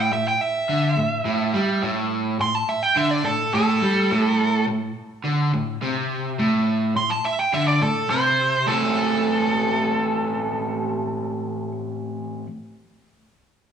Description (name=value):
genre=rock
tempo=105 BPM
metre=4/4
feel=straight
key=A minor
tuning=A4 = 440 Hz
part: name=nasal lead guitar with a parked wah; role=melody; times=0.0-11.7 s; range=A4 to C6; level=-22 LUFS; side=right 2 dB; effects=overdrive
part: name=overdriven semi-hollow guitar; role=riff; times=0.0-12.5 s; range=A2 to E4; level=-22 LUFS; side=equal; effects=none
room=wet large studio reverb, RT60 1.4 s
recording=band playing live in one room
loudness=-20 LUFS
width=side -8 dB against mid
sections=0.0-8.7 A section; 8.7-11.0 B section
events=none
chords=0.0 Am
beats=0.11 0.69 1.25 | 1.82 2.40 2.96 3.54 | 4.11 4.68 5.25 5.82 | 6.39 6.96 7.53 8.10 | 8.67 9.24 9.81 10.38